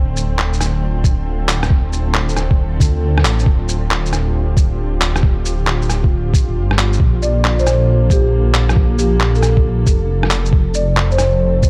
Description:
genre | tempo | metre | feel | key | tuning
future garage | 136 BPM | 4/4 | swing 66% on 16ths | D minor | A4 = 445 Hz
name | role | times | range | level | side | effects
dark studio string section | sustained chords | 0.0-11.7 s | D3 to A4 | -27 LUFS | equal | sidechain pumping
dark detuned saw bass | bass | 0.0-11.7 s | D1 to D2 | -19 LUFS | equal | sidechain pumping
electronic shaker, handclaps and rim click | drums | 0.2-11.7 s | none | -22 LUFS | equal | studio reverb
electronic kick drum | drums | 1.0-11.7 s | none | -16 LUFS | equal | studio reverb
marimba with medium mallets | melody | 7.2-11.6 s | G4 to D5 | -22 LUFS | equal | delay
room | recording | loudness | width
light reverb, small room ambience | dark, warm production | -16 LUFS | mono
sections
0.0-11.7 A section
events
none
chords
0.0 Dm7; 7.0 Bbmaj7; 10.5 F

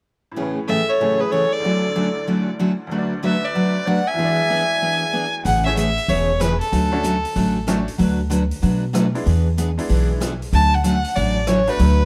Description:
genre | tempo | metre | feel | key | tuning
country, western swing | 189 BPM | 4/4 | swing 64% on 8ths | A major | A4 = 440 Hz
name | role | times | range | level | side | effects
tack piano | accompaniment | 0.3-11.8 s | D2 to D5 | -31 LUFS | equal | none
picked steel-string acoustic guitar | accompaniment | 0.4-12.0 s | A2 to B4 | -24 LUFS | equal | none
warm fiddle | melody | 0.7-7.8, 10.5-12.1 s | A4 to A5 | -23 LUFS | equal | none
growling clarinet | second line | 0.7-5.3 s | G#4 to E5 | -27 LUFS | equal | none
upright bass | bass | 5.5-12.1 s | E1 to B2 | -23 LUFS | equal | none
swinging big-band drum kit | drums | 5.5-11.9 s | hi-hat, rim click | -35 LUFS | equal | none
room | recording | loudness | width
light reverb | none | -20 LUFS | mono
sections
0.4-5.5 A section; 5.5-12.1 B section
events
none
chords
0.4 Amaj7; 1.6 Dmaj7; 2.9 Bm7/D; 4.2 E7; 5.5 Amaj7; 6.7 Dmaj7; 8.0 Bm7/D; 9.3 E7; 10.5 Dmaj7

